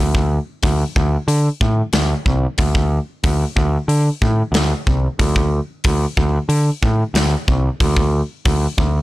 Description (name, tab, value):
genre	heavy metal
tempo	92 BPM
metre	4/4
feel	straight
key	unclear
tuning	A4 = 440 Hz
part	growling picked electric bass	bass	0.0-9.0 s	C2 to D3	-16 LUFS	equal	overdrive
part	modern studio drum kit	drums	0.1-8.9 s	hi-hat, kick drum, snare drum	-19 LUFS	equal	none
room	little or no reverb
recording	blown-out, overdriven recording, overdrive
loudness	-15 LUFS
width	side -18 dB against mid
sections	0.0-9.0 A section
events	none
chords	none